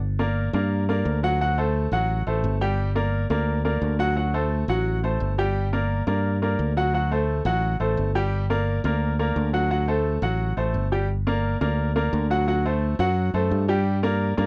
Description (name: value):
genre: latin, salsa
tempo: 173 BPM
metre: 4/4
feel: straight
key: G minor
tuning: A4 = 439 Hz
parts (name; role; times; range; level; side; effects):
- fingered electric bass; bass; 0.0-14.5 s; G1 to G2; -26 LUFS; equal; none
- bright upright piano; accompaniment; 0.2-14.5 s; F#3 to G5; -27 LUFS; equal; none
room: little or no reverb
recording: dry, close 1970s-style studio recording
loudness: -24 LUFS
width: mono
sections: 0.0-11.1 A section; 11.1-14.5 A section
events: none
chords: 0.0 Gm; 1.4 D7; 2.8 Gm; 4.2 D7; 5.6 Gm; 6.9 D7; 8.3 Gm; 9.7 D7; 11.1 Gm; 12.5 D7; 13.9 Gm